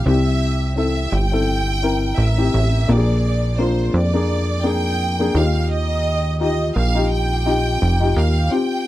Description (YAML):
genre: piano-driven pop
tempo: 85 BPM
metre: 4/4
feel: swing 56% on 16ths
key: unclear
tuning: A4 = 442 Hz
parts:
  - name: bright studio violin section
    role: melody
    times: 0.0-8.9 s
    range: C5 to G5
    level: -24 LUFS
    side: right 2 dB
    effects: none
  - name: dark upright piano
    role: accompaniment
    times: 0.0-8.9 s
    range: Bb2 to Bb4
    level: -21 LUFS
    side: left 3 dB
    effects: none
  - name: plucky analog bass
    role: bass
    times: 0.0-8.5 s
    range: F1 to F2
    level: -19 LUFS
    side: right 1 dB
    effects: none
room: little or no reverb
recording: dry, close 1970s-style studio recording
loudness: -16 LUFS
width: side -15 dB against mid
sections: 0.0-8.9 A section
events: break 8.5-8.9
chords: 0.1 C; 2.9 Bb7; 5.4 Ebadd9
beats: | 0.06 0.77 1.47 2.18 | 2.88 3.59 4.29 5.00 | 5.70 6.41 7.11 7.82 | 8.52